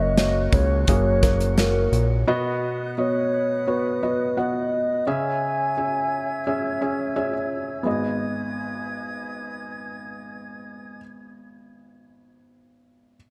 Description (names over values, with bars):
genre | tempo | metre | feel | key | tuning
piano-driven pop | 86 BPM | 4/4 | straight | G# minor | A4 = 439 Hz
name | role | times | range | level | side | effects
hollow clarinet-like synth lead | melody | 0.0-7.2 s | A#4 to G#5 | -28 LUFS | equal | chorus
felt-muted upright piano | accompaniment | 0.0-13.2 s | G#1 to G#5 | -28 LUFS | equal | none
flute section | sustained chords | 0.0-11.0 s | A#4 to G#6 | -38 LUFS | equal | none
fat analog bass | bass | 0.0-2.2 s | F#1 to C#2 | -24 LUFS | equal | none
modern studio drum kit | drums | 0.2-2.1 s | hi-hat, kick drum, snare drum | -25 LUFS | equal | none
room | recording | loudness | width
light reverb, small room ambience | dark, warm production | -23 LUFS | mono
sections
0.0-7.9 A section; 7.9-10.6 B section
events
felt piano fill 6.8-7.9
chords
0.0 F#; 2.3 B; 5.1 C#m; 7.9 G#m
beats
0.18 0.88 1.57 | 2.27 2.97 3.67 4.37 | 5.07 5.76 6.46 7.16 | 7.86 8.55 9.25 9.95